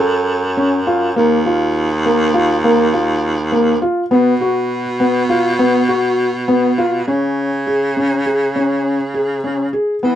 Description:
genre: contemporary instrumental, chamber music in an uneven meter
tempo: 203 BPM (eighths)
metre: 5/8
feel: straight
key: unclear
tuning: A4 = 440 Hz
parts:
  - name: felt-muted upright piano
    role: arpeggios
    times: 0.0-10.2 s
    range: Bb3 to A4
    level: -15 LUFS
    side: left 1 dB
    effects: none
  - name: raspy baritone saxophone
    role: bass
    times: 0.0-10.2 s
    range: Eb2 to E3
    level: -18 LUFS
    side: right 1 dB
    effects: none
room: light reverb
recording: dark, warm production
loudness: -13 LUFS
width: side -11 dB against mid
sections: 0.0-7.1 A section; 7.1-10.2 B section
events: none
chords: 0.0 Gbm; 1.2 Ebsus2; 4.1 Cb5; 7.1 Db5

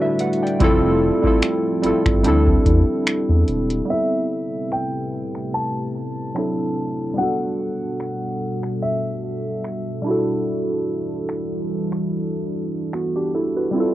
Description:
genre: contemporary R&B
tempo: 73 BPM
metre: 4/4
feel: swing 54% on 16ths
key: unclear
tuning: A4 = 440 Hz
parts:
  - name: warm analog keys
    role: accompaniment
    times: 0.0-13.9 s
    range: F#3 to G5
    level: -21 LUFS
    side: right 1 dB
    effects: chorus, cassette tape
  - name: deep dark ambient pad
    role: sustained chords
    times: 0.0-13.9 s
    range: B2 to E5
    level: -28 LUFS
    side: equal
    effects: chorus, built-in reverb, cassette tape
  - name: booming analog drum machine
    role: drums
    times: 0.2-13.1 s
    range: finger snaps, hi-hat, kick drum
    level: -20 LUFS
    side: equal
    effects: overdrive
  - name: smooth synth bass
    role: bass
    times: 0.6-3.8 s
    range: E1 to E2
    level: -19 LUFS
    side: equal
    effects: none
  - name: warm grand piano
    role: melody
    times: 3.9-10.0 s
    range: E5 to A5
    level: -27 LUFS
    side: left 1 dB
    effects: cassette tape, tape echo
room: moderate booth ambience, RT60 0.2 s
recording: home recording on cassette, low-pass filter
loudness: -19 LUFS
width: side -14 dB against mid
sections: 0.0-3.9 A section; 3.9-13.9 B section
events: none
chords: 0.0 Em11; 0.6 Fmaj9; 2.2 D9sus4; 3.9 Am9; 6.4 D9; 7.2 Gmaj9; 10.1 Em11

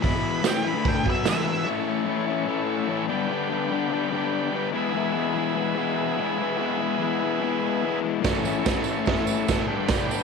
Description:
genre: garage rock duo or trio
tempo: 146 BPM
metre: 4/4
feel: straight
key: E mixolydian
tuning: A4 = 440 Hz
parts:
  - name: octave-fuzz lead guitar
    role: melody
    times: 0.0-1.7 s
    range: E5 to B5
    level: -29 LUFS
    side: right 1 dB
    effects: distortion
  - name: combo organ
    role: sustained chords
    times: 0.0-10.2 s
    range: E4 to E5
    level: -30 LUFS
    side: right 10 dB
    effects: none
  - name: crunchy overdriven guitar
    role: riff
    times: 0.0-10.2 s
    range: E2 to E4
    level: -25 LUFS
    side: left 10 dB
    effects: none
  - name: raw garage drum kit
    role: drums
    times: 0.0-1.4, 8.2-10.0 s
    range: crash cymbal, hi-hat, kick drum, snare drum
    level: -25 LUFS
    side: right 4 dB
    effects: none
  - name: tambourine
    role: percussion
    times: 0.4-1.4, 8.2-10.2 s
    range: none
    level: -38 LUFS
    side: right 16 dB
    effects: none
room: wet spring reverb, RT60 1.2 s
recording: 1960s-style stereo with parts hard left and right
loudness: -22 LUFS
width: side -5 dB against mid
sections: 0.0-1.7 A section; 1.7-10.2 B section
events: lead electric guitar solo 0.0-1.7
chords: 0.0 E; 1.7 A; 3.1 G; 4.7 E; 8.2 A; 9.7 G

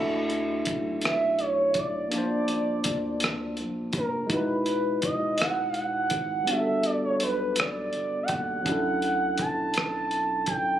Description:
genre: slow six-eight R&B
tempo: 55 BPM (dotted quarters)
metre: 6/8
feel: straight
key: D major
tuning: A4 = 441 Hz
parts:
  - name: barky tine electric piano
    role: accompaniment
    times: 0.0-10.8 s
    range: F#3 to A5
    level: -29 LUFS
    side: equal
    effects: overdrive
  - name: round analog bass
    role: bass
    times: 0.0-10.8 s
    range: E1 to Eb2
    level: -41 LUFS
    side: right 1 dB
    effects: none
  - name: cloth-damped thuddy drum kit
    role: drums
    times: 0.3-10.6 s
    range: hi-hat, kick drum, rim click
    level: -30 LUFS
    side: equal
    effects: none
  - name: gliding portamento lead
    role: melody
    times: 1.0-10.8 s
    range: Bb4 to A5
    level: -27 LUFS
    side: right 1 dB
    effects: chorus, tape echo
room: light reverb, studio reverb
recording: recorded on a phone in the room, club ambience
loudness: -24 LUFS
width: side -11 dB against mid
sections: 0.0-10.8 A section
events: none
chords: 0.0 Dadd9; 2.1 Bbmaj9; 4.3 Emaj9; 6.5 Gmaj9; 8.7 Dmaj9

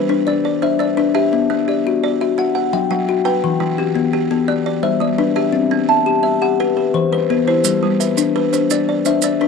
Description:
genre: southern african traditional, mbira-style interlocking cycle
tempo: 114 BPM (dotted quarters)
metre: 12/8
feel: straight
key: G major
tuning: A4 = 439 Hz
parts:
  - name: buzzing kalimba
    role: arpeggios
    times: 0.0-9.5 s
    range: E3 to A5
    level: -20 LUFS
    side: right 10 dB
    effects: none
  - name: kalimba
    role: arpeggios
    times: 0.0-9.5 s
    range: E3 to G5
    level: -16 LUFS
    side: left 8 dB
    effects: tape echo
  - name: maracas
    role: percussion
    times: 7.6-9.4 s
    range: none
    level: -22 LUFS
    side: right 14 dB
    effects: none
room: moderate spring reverb, RT60 2.5 s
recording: 1960s-style stereo with parts hard left and right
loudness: -14 LUFS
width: side -5 dB against mid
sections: 0.0-9.5 A section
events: none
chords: 0.0 G; 1.3 Bm; 3.4 Em; 4.5 G; 5.5 C; 6.6 Em; 7.6 G

